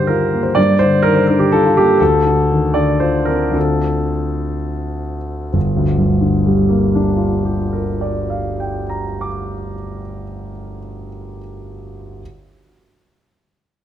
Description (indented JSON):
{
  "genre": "neoclassical minimalist piano",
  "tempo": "80-127 BPM",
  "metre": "3/4",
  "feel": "rubato",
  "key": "G minor",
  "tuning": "A4 = 440 Hz",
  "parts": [
    { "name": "warm concert grand piano", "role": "solo", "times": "0.0-12.2 s", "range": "G1 to D6", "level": "-15 LUFS", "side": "equal", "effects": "none" }
  ],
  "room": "moderate recital hall reverb, RT60 1.9 s",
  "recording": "close, detailed microphones",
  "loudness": "-14 LUFS",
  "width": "side -10 dB against mid",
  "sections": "0.0-5.5 A section; 5.5-10.0 B section",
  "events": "slowing down 1.3-5.5",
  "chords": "0.0 Gm7; 2.0 Dm7; 5.5 Gm7",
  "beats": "0.08 | 0.57 1.05 1.52 | 2.00 2.48 3.00 | 3.55 4.16 4.81 | 5.54 6.29 7.03 | 7.75 8.49 9.22"
}